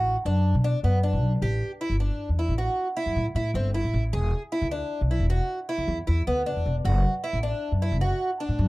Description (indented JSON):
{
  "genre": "progressive instrumental, band music in an uneven meter",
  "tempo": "155 BPM",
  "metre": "7/4",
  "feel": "straight",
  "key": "unclear",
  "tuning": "A4 = 440 Hz",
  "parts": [
    { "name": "picked twelve-string acoustic guitar", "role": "arpeggios", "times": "0.0-8.7 s", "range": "B3 to G#4", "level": "-28 LUFS", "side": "equal", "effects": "none" },
    { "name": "upright bass", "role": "bass", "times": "0.0-8.7 s", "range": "E1 to B2", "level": "-24 LUFS", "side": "equal", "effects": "none" }
  ],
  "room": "little or no reverb",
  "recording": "dry, close 1970s-style studio recording",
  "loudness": "-23 LUFS",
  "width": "side -20 dB against mid",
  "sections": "0.0-1.4 A section; 1.4-8.7 B section",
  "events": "none",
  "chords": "0.0 Bm; 1.4 A7(no3); 4.1 E7(no3); 6.9 Bm7/F# (rootless)"
}